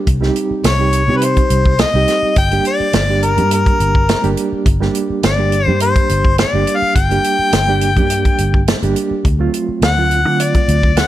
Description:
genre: straight-eighth soul blues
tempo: 105 BPM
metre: 4/4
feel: straight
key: G harmonic minor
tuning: A4 = 440 Hz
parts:
  - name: reed electric piano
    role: accompaniment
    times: 0.0-10.9 s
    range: F#3 to G4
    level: -19 LUFS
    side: right 4 dB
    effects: overdrive, fast tremolo
  - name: vintage muted fingered electric bass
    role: bass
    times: 0.1-11.0 s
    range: G1 to D3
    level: -17 LUFS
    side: equal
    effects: none
  - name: warm soul drum kit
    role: drums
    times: 0.1-11.1 s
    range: hi-hat, kick drum, snare drum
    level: -16 LUFS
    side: equal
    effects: none
  - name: clear harmonica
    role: melody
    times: 0.7-11.1 s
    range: Bb4 to G5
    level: -17 LUFS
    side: left 3 dB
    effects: overdrive
room: light reverb, small room ambience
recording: none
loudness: -12 LUFS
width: side -13 dB against mid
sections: 0.0-11.1 A section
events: none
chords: 0.1 Cm; 2.4 Gm; 9.3 D7#9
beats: | 0.07 0.65 1.22 1.79 | 2.37 2.94 3.51 4.09 | 4.66 5.24 5.81 6.38 | 6.96 7.53 8.10 8.68 | 9.25 9.82 10.40 10.97

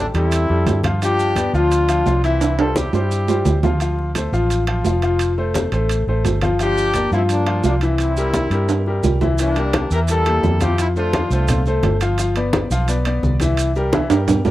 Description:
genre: latin, salsa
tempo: 172 BPM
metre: 4/4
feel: straight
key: unclear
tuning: A4 = 440 Hz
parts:
  - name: brilliant horn section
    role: melody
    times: 0.0-3.6, 6.6-11.6 s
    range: A3 to Bb4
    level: -22 LUFS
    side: left 1 dB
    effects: none
  - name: bright upright piano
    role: accompaniment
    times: 0.0-14.5 s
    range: E3 to F5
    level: -21 LUFS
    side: left 2 dB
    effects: none
  - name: vintage muted fingered electric bass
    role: bass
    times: 0.0-14.5 s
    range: F1 to G2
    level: -20 LUFS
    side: equal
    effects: none
  - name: congas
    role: percussion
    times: 0.1-14.5 s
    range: none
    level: -23 LUFS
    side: left 1 dB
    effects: none
  - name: maracas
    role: percussion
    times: 0.1-14.5 s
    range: none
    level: -34 LUFS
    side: right 6 dB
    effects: none
  - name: timbales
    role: percussion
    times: 0.1-14.5 s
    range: none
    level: -23 LUFS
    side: right 6 dB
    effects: none
room: small room reverb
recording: dry, close 1970s-style studio recording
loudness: -16 LUFS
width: side -15 dB against mid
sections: 0.0-9.4 A section; 9.4-14.5 B section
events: drum fill 2.4-3.8, 8.7-9.4, 13.9-14.5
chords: 0.0 Am7; 1.0 G7; 2.4 C; 3.8 Dm; 5.2 Fadd9; 6.6 Gm7; 8.0 C7; 9.4 C9; 10.8 F; 12.2 G7; 13.6 C7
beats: 0.32 0.67 | 1.02 1.37 1.72 2.06 | 2.41 2.76 3.11 3.46 | 3.81 4.16 4.50 4.85 | 5.20 5.55 5.90 6.25 | 6.60 6.95 7.30 7.64 | 7.99 8.34 8.69 9.04 | 9.39 9.74 10.09 10.44 | 10.79 11.13 11.48 11.83 | 12.18 12.53 12.88 13.23 | 13.58 13.93 14.28

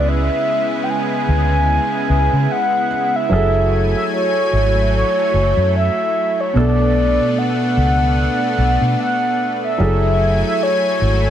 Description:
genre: R&B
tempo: 74 BPM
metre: 4/4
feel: swing 58% on 16ths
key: F# minor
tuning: A4 = 439 Hz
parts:
  - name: mellow horn-like synth lead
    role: melody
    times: 0.0-11.3 s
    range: C#5 to G#5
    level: -18 LUFS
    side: equal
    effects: chorus, ping-pong delay
  - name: warm grand piano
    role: accompaniment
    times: 0.0-11.3 s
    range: B2 to B4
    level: -22 LUFS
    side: right 2 dB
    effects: none
  - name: lush unison pad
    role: sustained chords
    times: 0.0-11.3 s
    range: C#3 to G#5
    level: -22 LUFS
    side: equal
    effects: chorus
  - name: vintage muted fingered electric bass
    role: bass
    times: 0.0-11.3 s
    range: F#1 to C#3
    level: -17 LUFS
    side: equal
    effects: none
room: little or no reverb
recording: none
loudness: -14 LUFS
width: side -10 dB against mid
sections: 0.0-11.3 A section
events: none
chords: 0.0 C#m7; 3.3 F#m9; 6.6 Bm7; 9.8 F#m9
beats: | 0.07 0.88 1.69 2.50 | 3.31 4.12 4.93 5.74 | 6.55 7.36 8.18 8.98 | 9.80 10.61

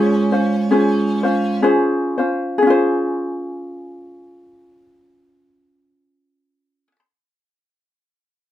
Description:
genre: Hawaiian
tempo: 59-69 BPM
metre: 4/4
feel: swing 58% on 8ths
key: Db major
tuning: A4 = 441 Hz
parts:
  - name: lap resonator guitar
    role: melody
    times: 0.0-1.6 s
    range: Db4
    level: -30 LUFS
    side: equal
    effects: plate reverb
  - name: vibraphone with medium hard mallets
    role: second line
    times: 0.0-1.6 s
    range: Ab3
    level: -19 LUFS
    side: right 3 dB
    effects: none
  - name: ukulele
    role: accompaniment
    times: 0.0-7.0 s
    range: Db4 to C5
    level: -17 LUFS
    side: left 1 dB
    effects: none
room: moderate studio reverb, RT60 0.6 s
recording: none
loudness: -15 LUFS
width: side -12 dB against mid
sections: 0.0-2.6 A section; 2.6-6.6 B section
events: slowing down 0.0-2.6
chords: 0.0 Dbmaj7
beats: 0.70 1.63 | 2.61 3.62 4.63 5.64

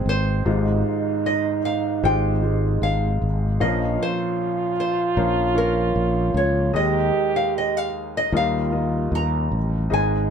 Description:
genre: acoustic folk-pop ballad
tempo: 76 BPM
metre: 4/4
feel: straight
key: unclear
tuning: A4 = 440 Hz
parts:
  - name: mellow French horn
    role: second line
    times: 0.0-10.3 s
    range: C4 to G4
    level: -25 LUFS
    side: right 4 dB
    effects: none
  - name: warm upright piano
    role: accompaniment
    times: 0.0-10.3 s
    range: Ab1 to F5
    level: -27 LUFS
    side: left 1 dB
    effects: none
  - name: sustaining fretless electric bass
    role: bass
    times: 0.0-10.3 s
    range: Ab1 to Eb2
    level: -22 LUFS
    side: left 1 dB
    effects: none
  - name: nylon-string guitar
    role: melody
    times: 0.1-10.3 s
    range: Bb4 to Bb5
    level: -26 LUFS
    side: left 1 dB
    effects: none
room: light reverb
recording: dark, warm production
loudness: -19 LUFS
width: side -7 dB against mid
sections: 0.0-10.3 A section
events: none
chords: 0.5 Fmadd9/Ab; 3.6 Bbm; 6.7 Ebsus4; 8.3 Ebadd9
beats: | 0.47 1.25 2.04 2.83 | 3.61 4.39 5.18 5.96 | 6.75 7.53 8.32 9.12 | 9.91

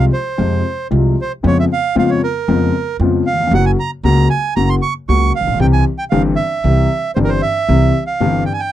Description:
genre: tango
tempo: 115 BPM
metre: 4/4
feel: rubato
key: unclear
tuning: A4 = 442 Hz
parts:
  - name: bandoneon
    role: melody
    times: 0.0-8.7 s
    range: Bb4 to Db6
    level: -18 LUFS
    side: right 6 dB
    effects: none
  - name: warm concert grand piano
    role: accompaniment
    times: 0.0-8.4 s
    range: G1 to G4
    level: -16 LUFS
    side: left 4 dB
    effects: none
  - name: upright bass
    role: bass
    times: 0.0-8.4 s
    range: Gb1 to F2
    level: -17 LUFS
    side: right 2 dB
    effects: none
room: light reverb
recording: dry, close 1970s-style studio recording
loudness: -13 LUFS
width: side -12 dB against mid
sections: 0.0-8.7 A section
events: none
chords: 0.0 Fm; 1.4 Db7/F; 3.5 Gb; 5.6 C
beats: 0.39 0.92 | 1.44 1.96 2.48 3.00 | 3.52 4.04 4.56 5.08 | 5.60 6.12 6.64 7.17 | 7.69 8.21

